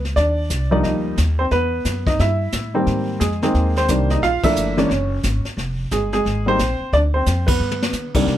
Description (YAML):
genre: jazz piano trio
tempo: 178 BPM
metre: 4/4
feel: swing 63% on 8ths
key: unclear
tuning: A4 = 439 Hz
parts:
  - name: upright bass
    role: bass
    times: 0.0-8.4 s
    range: F1 to D3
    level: -21 LUFS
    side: equal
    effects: none
  - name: jazz brush drum kit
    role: drums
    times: 0.0-8.4 s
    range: brushed snare drum, crash cymbal, hi-hat, kick drum, snare drum, toms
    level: -24 LUFS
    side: left 1 dB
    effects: none
  - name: dark baby grand piano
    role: melody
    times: 0.2-8.4 s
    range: C2 to F5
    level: -19 LUFS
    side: equal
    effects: none
room: little or no reverb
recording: none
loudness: -17 LUFS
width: side -12 dB against mid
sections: 0.0-8.3 A section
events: band accent 4.4, 7.4; drum fill 7.6-7.9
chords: 0.2 Ebmaj7; 1.5 Asus2; 2.9 Abmaj9; 4.2 Gm7; 4.9 F#sus2; 5.6 Fmadd9; 6.9 Dm7; 7.6 G